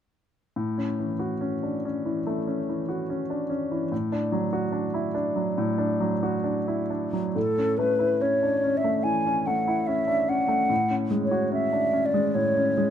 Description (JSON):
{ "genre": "classical, impressionist duo for flute and grand piano", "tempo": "72 BPM", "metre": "4/4", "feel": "rubato", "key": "A major", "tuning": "A4 = 440 Hz", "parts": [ { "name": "clear baby grand piano", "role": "accompaniment", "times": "0.6-12.9 s", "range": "A2 to F#4", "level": "-25 LUFS", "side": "left 1 dB", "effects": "none" }, { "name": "mellow hollow silver concert flute", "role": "melody", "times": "7.4-12.9 s", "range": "A4 to G#5", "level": "-24 LUFS", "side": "equal", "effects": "none" } ], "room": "light reverb", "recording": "close, detailed microphones", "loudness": "-23 LUFS", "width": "side -9 dB against mid", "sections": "0.6-7.4 A section; 7.4-12.9 B section", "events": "none", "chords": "0.6 A6; 3.9 Dadd9/A; 7.4 A; 10.7 F#madd9/A", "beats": "| 0.57 1.43 2.27 3.09 | 3.91 4.73 5.57 6.44 | 7.36 8.21 9.05 9.88 | 10.70 11.53 12.35" }